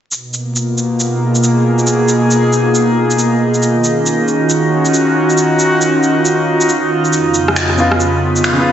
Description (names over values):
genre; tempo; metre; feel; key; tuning
future garage; 137 BPM; 4/4; swing 62% on 16ths; G# dorian; A4 = 442 Hz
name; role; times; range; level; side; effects
airy breathy pad; sustained chords; 0.1-8.7 s; E#2 to G#4; -12 LUFS; equal; chorus, vintage 12-bit sampler grit
electronic shaker, rim click and finger snaps; drums; 0.1-8.6 s; none; -19 LUFS; equal; overdrive
drifting glass-harmonics texture; texture; 1.2-8.7 s; D#4 to D#5; -20 LUFS; right 2 dB; chorus, built-in reverb
warm upright piano; accompaniment; 7.8-8.7 s; C#3 to E#4; -16 LUFS; left 1 dB; tape echo
room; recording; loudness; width
wet lush hall reverb, RT60 1.9 s, digital ambience; dreamy mix soaked in reverb, vinyl crackle, nothing above 8.0 kHz; -11 LUFS; side -10 dB against mid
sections
0.1-8.7 A section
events
none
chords
0.1 G#m69; 3.6 D#m9; 7.1 C#7/E#